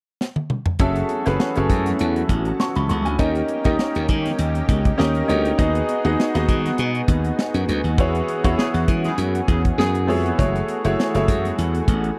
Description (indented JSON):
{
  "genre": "polished 1980s jazz-funk pop",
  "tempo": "100 BPM",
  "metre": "4/4",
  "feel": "swing 54% on 16ths",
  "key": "F# dorian",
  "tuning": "A4 = 440 Hz",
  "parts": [
    { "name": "crisp fusion drum kit", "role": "drums", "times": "0.2-12.2 s", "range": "hi-hat, kick drum, snare drum, toms", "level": "-24 LUFS", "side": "equal", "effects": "none" },
    { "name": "clear baby grand piano", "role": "accompaniment", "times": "0.8-12.2 s", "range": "A3 to C#6", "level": "-25 LUFS", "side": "equal", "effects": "analog chorus" },
    { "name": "lush unison pad", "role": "sustained chords", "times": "0.8-12.2 s", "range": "E3 to G#4", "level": "-31 LUFS", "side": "equal", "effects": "chorus" },
    { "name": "glassy slap bass", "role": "bass", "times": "0.8-12.1 s", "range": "F#1 to E3", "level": "-24 LUFS", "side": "equal", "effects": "none" },
    { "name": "congas", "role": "percussion", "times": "0.8-12.0 s", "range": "none", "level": "-37 LUFS", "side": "equal", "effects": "none" },
    { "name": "warm horn section", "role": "second line", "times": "8.6-10.2 s", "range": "C#3 to G#4", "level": "-28 LUFS", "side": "equal", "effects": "none" }
  ],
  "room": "little or no reverb",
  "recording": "dry, close 1970s-style studio recording",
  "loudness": "-20 LUFS",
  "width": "mono",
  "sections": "0.8-12.2 A section",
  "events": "drum fill 0.2-0.8; band accent 8.0-10.4",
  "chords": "0.0 N.C.; 0.8 F#m9; 3.2 D#7; 5.6 G#m7/D#; 8.0 E69; 10.4 F#m9",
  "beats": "0.20 | 0.80 1.40 2.00 2.60 | 3.20 3.79 4.39 4.99 | 5.59 6.19 6.79 7.39 | 7.99 8.59 9.19 9.79 | 10.38 10.98 11.58 12.18"
}